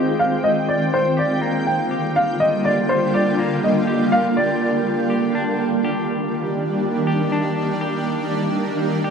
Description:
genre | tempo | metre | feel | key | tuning
hip hop | 122 BPM | 4/4 | half-time | unclear | A4 = 441 Hz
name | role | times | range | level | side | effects
felt-muted upright piano | melody | 0.0-5.3 s | C5 to G5 | -21 LUFS | equal | low-pass filter, ping-pong delay
shimmering ambient pad | sustained chords | 0.0-9.1 s | D3 to G5 | -19 LUFS | right 1 dB | chorus, built-in reverb, low-pass filter
clean electric guitar | arpeggios | 0.0-9.1 s | Ab3 to G4 | -30 LUFS | left 2 dB | low-pass filter, ping-pong delay
room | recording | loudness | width
wet studio reverb, RT60 0.6 s | rough home demo mix | -17 LUFS | side -6 dB against mid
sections
0.0-5.4 A section; 5.4-9.1 B section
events
none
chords
0.0 Fm9; 1.4 Gm7; 5.4 Ebmaj7

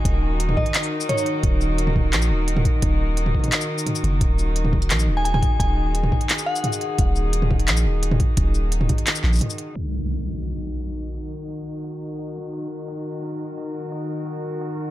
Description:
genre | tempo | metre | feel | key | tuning
half-time drum and bass | 173 BPM | 4/4 | half-time | Eb minor | A4 = 436 Hz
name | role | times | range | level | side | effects
warm symphonic cello section | sustained chords | 0.0-14.9 s | Eb3 to Bb4 | -28 LUFS | left 1 dB | sidechain pumping, low-pass filter
long sustained 808-style bass | bass | 0.1-9.4 s | Eb1 to Bb1 | -21 LUFS | equal | none
electronic kick drum | drums | 0.1-9.0 s | none | -21 LUFS | equal | none
industrial drum kit | drums | 0.1-14.7 s | handclaps, hi-hat, shaker, toms | -24 LUFS | equal | low-pass filter on hats, low-pass filter on toms, low-pass filter on snare, low-pass filter on perc, low-pass filter on room
glassy synth bell | melody | 0.6-1.4, 5.2-7.0 s | Db5 to Ab5 | -28 LUFS | left 1 dB | chorus, ping-pong delay
impact | sound effects | 9.8-11.1 s | none | -27 LUFS | equal | none
room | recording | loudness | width
little or no reverb | low-pass filter | -20 LUFS | side -15 dB against mid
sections
0.0-9.8 A section; 9.8-14.9 B section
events
drop 0.0-9.8; break 9.4-9.8; impact 9.8-11.1; filter sweep 9.8-14.9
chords
0.0 Ebm

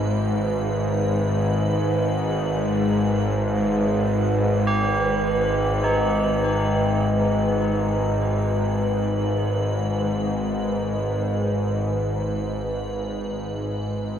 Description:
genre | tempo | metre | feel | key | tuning
dark ambient drone | free time | none | none | G# harmonic minor | A4 = 440 Hz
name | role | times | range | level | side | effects
bowed-like drone | drone | 0.0-14.2 s | G#1 to G#2 | -22 LUFS | left 1 dB | built-in reverb
icy glass pad | texture | 0.0-14.2 s | B4 | -27 LUFS | right 2 dB | chorus, built-in reverb
tubular bells | arpeggios | 4.7-14.1 s | D#4 to G4 | -28 LUFS | right 1 dB | ping-pong delay
room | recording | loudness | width
wet huge ambient reverb, RT60 7.4 s | worn, warbling old tape, cassette tape, warbly pitch drift | -20 LUFS | side -9 dB against mid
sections
0.0-14.2 A section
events
fade-out 11.0-14.2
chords
0.0 G#m

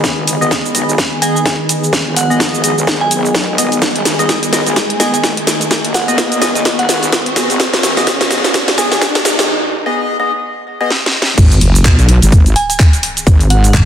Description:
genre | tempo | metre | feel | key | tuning
bass house | 127 BPM | 4/4 | swing 58% on 16ths | G# minor | A4 = 436 Hz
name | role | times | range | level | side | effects
sweeping resonant pad | sustained chords | 0.0-13.9 s | D#3 to G#4 | -22 LUFS | right 1 dB | chorus, sidechain pumping
wobble bass | bass | 0.0-13.7 s | F#1 to B1 | -15 LUFS | equal | chorus, overdrive, sidechain pumping, high-pass filter
electronic kick drum | drums | 0.0-13.8 s | none | -12 LUFS | equal | high-pass filter on kick, studio reverb
garage drum kit | drums | 0.0-13.9 s | cabasa, crash cymbal, handclaps, hi-hat, snare drum | -14 LUFS | equal | studio reverb, soft clipping on snare
riser and sub drop | sound effects | 0.3-13.3 s | none | -22 LUFS | equal | none
deep dark ambient pad | texture | 0.0-9.5, 12.9-13.9 s | G#4 to C#6 | -24 LUFS | left 1 dB | chorus, built-in reverb, sidechain pumping
percussive organ stab | stabs | 0.4-10.9 s | B3 to D#5 | -20 LUFS | left 2 dB | wide subtle chorus, sidechain pumping, digital delay
glassy synth bell | melody | 1.2-9.0, 12.6-13.7 s | D#5 to G#5 | -20 LUFS | right 2 dB | chorus, tremolo, digital delay
metallic FM bass | bass | 13.7-13.9 s | G#1 | -9 LUFS | equal | overdrive, sidechain pumping
room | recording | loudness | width
moderate lush hall reverb, RT60 1.8 s, digital ambience | dense, heavily limited modern master, high-pass filter | -10 LUFS | side -9 dB against mid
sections
0.0-11.4 A section; 11.4-13.9 B section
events
build-up 0.0-11.4; drum fill 0.0-9.5, 10.9-11.4; riser 0.3-9.5; break 9.5-11.4; drop 11.4-13.9; impact 11.4-13.3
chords
0.0 G#m

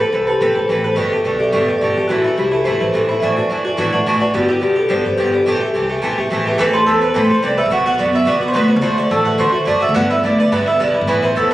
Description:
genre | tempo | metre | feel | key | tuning
celtic folk, Celtic reel | 214 BPM | 4/4 | swing 54% on 8ths | A dorian | A4 = 440 Hz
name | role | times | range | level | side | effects
marimba with medium mallets | melody | 0.0-11.5 s | E4 to F#5 | -18 LUFS | equal | plate reverb
Irish bouzouki | accompaniment | 0.0-11.5 s | G2 to B4 | -17 LUFS | right 1 dB | none
upright bass | bass | 0.1-11.5 s | F#1 to D3 | -22 LUFS | equal | none
mandolin | second line | 6.6-11.5 s | A4 to F#5 | -20 LUFS | right 2 dB | none
room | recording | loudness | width
moderate studio reverb, RT60 0.6 s | recorded on a phone in the room, club reverb, compression | -14 LUFS | side -15 dB against mid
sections
0.0-6.6 A section; 6.6-11.5 B section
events
none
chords
0.0 Amadd9; 1.0 Gadd9; 2.1 Am; 3.2 Dadd9/A; 4.3 G; 5.5 Am7; 6.6 Amadd9; 7.7 Bm; 8.8 D; 10.0 G6

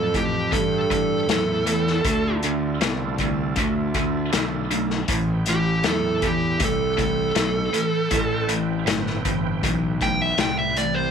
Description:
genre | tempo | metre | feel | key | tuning
blues rock power trio and southern rock | 79 BPM | 4/4 | straight | A minor | A4 = 440 Hz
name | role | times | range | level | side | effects
dark smooth lead guitar | melody | 0.0-11.1 s | G4 to G5 | -23 LUFS | right 3 dB | overdrive
overdriven tonewheel organ | sustained chords | 0.0-11.1 s | C4 to G5 | -35 LUFS | right 11 dB | chorus vibrato, slow rotary speaker
distorted electric guitar | riff | 0.0-11.1 s | A2 to B3 | -24 LUFS | equal | distortion
fuzz fingered electric bass | bass | 0.0-11.1 s | G1 to G2 | -27 LUFS | equal | overdrive
vintage drum kit | drums | 0.1-10.9 s | hi-hat, kick drum, snare drum | -27 LUFS | left 4 dB | none
room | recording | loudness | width
light reverb, studio reverb | 1960s-style stereo | -20 LUFS | side -7 dB against mid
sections
0.0-11.1 A section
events
none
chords
0.0 Am7; 2.0 Dm7; 5.1 Am7

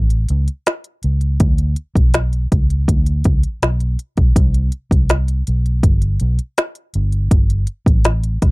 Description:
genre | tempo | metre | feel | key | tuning
lush 1970s-style soul | 81 BPM | 4/4 | straight | unclear | A4 = 438 Hz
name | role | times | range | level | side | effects
vintage muted fingered electric bass | bass | 0.0-8.5 s | G1 to D2 | -16 LUFS | equal | none
organic electronic drum kit | drums | 0.1-8.5 s | hi-hat, kick drum, snare drum | -15 LUFS | equal | overdrive
room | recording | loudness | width
little or no reverb | dry, close 1970s-style studio recording | -14 LUFS | side -25 dB against mid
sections
0.0-8.5 A section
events
none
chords
none

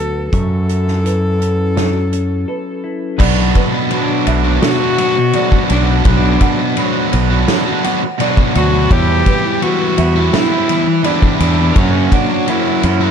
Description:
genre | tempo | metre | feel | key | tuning
post-rock | 84 BPM | 4/4 | straight | B harmonic minor from 3.2 s | A4 = 440 Hz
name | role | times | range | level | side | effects
warm cello | melody | 0.0-13.1 s | C#4 to A4 | -19 LUFS | equal | digital delay
pedal steel guitar | sustained chords | 0.0-13.1 s | G3 to C#6 | -30 LUFS | left 3 dB | none
clean electric guitar | arpeggios | 0.0-3.2 s | F#3 to A4 | -24 LUFS | left 4 dB | lush chorus, digital delay
felt-muted upright piano | arpeggios | 0.0-12.8 s | A4 to F#5 | -27 LUFS | right 6 dB | digital delay
growling fingered electric bass | bass | 0.0-13.1 s | B1 to F#2 | -15 LUFS | equal | overdrive
loose indie drum kit | drums | 0.3-13.0 s | crash cymbal, hi-hat, kick drum, ride cymbal, snare drum | -18 LUFS | equal | none
sludgy distorted guitar | riff | 3.2-13.1 s | B2 to G4 | -18 LUFS | left 12 dB | overdrive
tight distorted guitar | riff | 3.2-13.1 s | B2 to G4 | -18 LUFS | right 15 dB | distortion
room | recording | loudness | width
little or no reverb | dark, warm production | -12 LUFS | side -7 dB against mid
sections
0.0-3.2 A section; 3.2-13.1 B section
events
break 2.5-3.2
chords
0.3 F#m7; 3.2 Bm; 8.9 Em; 11.8 F#

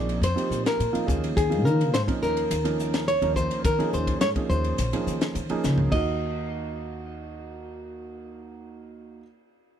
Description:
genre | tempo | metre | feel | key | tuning
electric jazz fusion | 105 BPM | 4/4 | straight | Eb dorian | A4 = 440 Hz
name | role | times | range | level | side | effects
flamenco guitar | melody | 0.0-9.2 s | Ab4 to Eb5 | -27 LUFS | equal | none
dark baby grand piano | accompaniment | 0.0-9.2 s | F3 to Bb4 | -30 LUFS | right 4 dB | none
upright bass | bass | 0.0-9.2 s | Bb1 to Eb3 | -27 LUFS | left 1 dB | none
crisp fusion drum kit | drums | 0.1-6.1 s | crash cymbal, hi-hat, kick drum, ride cymbal, snare drum, toms | -30 LUFS | left 1 dB | none
room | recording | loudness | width
small room reverb | none | -22 LUFS | side -9 dB against mid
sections
0.0-5.9 A section; 5.9-8.2 B section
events
drum fill 5.6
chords
0.0 Bb9sus4; 1.1 Eb9sus4; 5.9 Ebm

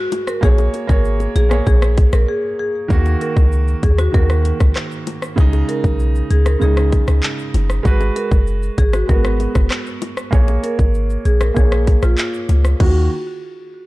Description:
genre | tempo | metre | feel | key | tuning
dancehall | 97 BPM | 4/4 | straight | Eb minor | A4 = 440 Hz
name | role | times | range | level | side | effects
marimba with medium hard mallets | melody | 0.0-13.1 s | F4 to Bb4 | -23 LUFS | left 1 dB | low-pass filter, ping-pong delay
warm grand piano | accompaniment | 0.0-13.1 s | Db3 to Db5 | -24 LUFS | right 3 dB | low-pass filter
island pop drum kit | drums | 0.1-12.9 s | crash cymbal, handclaps, hi-hat, kick drum, rim click, shaker | -17 LUFS | equal | vintage 12-bit sampler grit
bongos | percussion | 0.1-13.1 s | none | -31 LUFS | left 8 dB | none
clean 808-style bass | bass | 0.4-13.1 s | Gb1 to Eb2 | -15 LUFS | equal | none
room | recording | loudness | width
small room reverb | dark, warm production | -14 LUFS | side -19 dB against mid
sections
0.0-2.9 A section; 2.9-12.8 B section; 12.8-13.9 C section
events
break 2.3-2.9; filter sweep 2.9-12.8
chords
0.4 Bbm7; 2.9 Ebm; 5.4 Dbsus2; 7.9 Abm7; 10.3 Bbm7; 12.8 Ebm

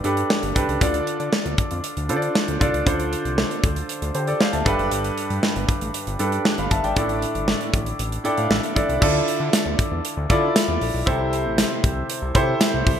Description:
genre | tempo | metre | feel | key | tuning
1980s-style pop | 117 BPM | 4/4 | straight | D dorian | A4 = 440 Hz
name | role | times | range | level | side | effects
clear concert grand piano | accompaniment | 0.0-13.0 s | G2 to B5 | -23 LUFS | equal | none
fat analog bass | bass | 0.0-13.0 s | F#1 to D3 | -27 LUFS | equal | none
modern studio drum kit | drums | 0.0-13.0 s | crash cymbal, hi-hat, kick drum, snare drum, tambourine | -22 LUFS | equal | gated reverb
room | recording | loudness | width
moderate plate reverb, RT60 1.3 s, small room ambience | bright 1980s-style digital production | -19 LUFS | side -9 dB against mid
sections
0.0-9.0 A section; 9.0-13.0 B section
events
grand piano fill 8.0-9.0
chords
0.0 Gadd9; 0.8 Dm; 4.7 Gadd9; 7.0 Asus4; 9.0 Dmadd9; 11.1 Am7

